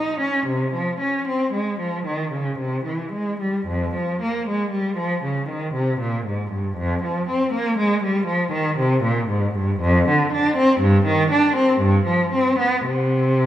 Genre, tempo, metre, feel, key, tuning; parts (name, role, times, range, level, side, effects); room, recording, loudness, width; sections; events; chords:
classical, baroque-style suite movement for unaccompanied cello; 53-61 BPM; 3/4; rubato; A4 = 441 Hz
warm cello; solo; 0.0-13.5 s; F2 to Eb4; -18 LUFS; equal
moderate concert hall reverb, RT60 2.4 s; -19 LUFS; side -12 dB against mid
0.0-13.5 A section